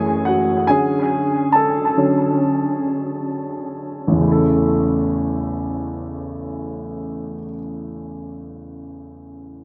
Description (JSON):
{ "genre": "pop", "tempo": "66-72 BPM", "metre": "4/4", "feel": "straight", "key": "A major", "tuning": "A4 = 440 Hz", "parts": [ { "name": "warm upright piano", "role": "accompaniment", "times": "0.0-9.6 s", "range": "A1 to A5", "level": "-21 LUFS", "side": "equal", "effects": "analog delay" } ], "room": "moderate spring reverb, RT60 2.5 s", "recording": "echo-heavy mix", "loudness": "-20 LUFS", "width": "mono", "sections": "0.0-4.2 A section; 4.2-7.9 B section", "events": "slowing down 0.0-4.2; upright piano solo 0.0-4.2", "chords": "0.0 F#m7; 0.7 Dmaj7; 4.2 A", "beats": "| 0.69 1.54 2.41 3.29 | 4.20 5.12 6.03 6.95" }